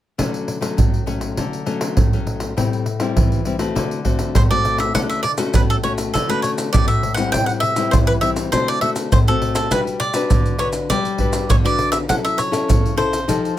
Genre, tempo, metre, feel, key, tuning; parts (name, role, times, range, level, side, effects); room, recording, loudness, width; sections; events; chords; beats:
samba and choro; 101 BPM; 4/4; straight; D major; A4 = 440 Hz
nylon-string guitar; accompaniment; 0.2-13.6 s; A2 to B4; -22 LUFS; left 5 dB
surdo, pandeiro and maracas; percussion; 0.2-13.6 s; -19 LUFS; right 1 dB
cavaquinho; melody; 4.4-13.6 s; A4 to G5; -21 LUFS; right 1 dB
light reverb; close, detailed microphones; -16 LUFS; side -12 dB against mid
0.2-5.0 A section; 5.0-13.6 B section
0.2 Dmaj7; 2.6 Am7; 3.8 D7; 5.0 Dmaj7; 7.3 Am7; 8.5 D7; 9.7 Gmaj7; 12.1 F#m7
| 0.18 0.78 1.38 1.97 | 2.57 3.17 3.76 4.36 | 4.95 5.55 6.14 6.74 | 7.33 7.93 8.53 9.12 | 9.71 10.31 10.90 11.50 | 12.10 12.69 13.28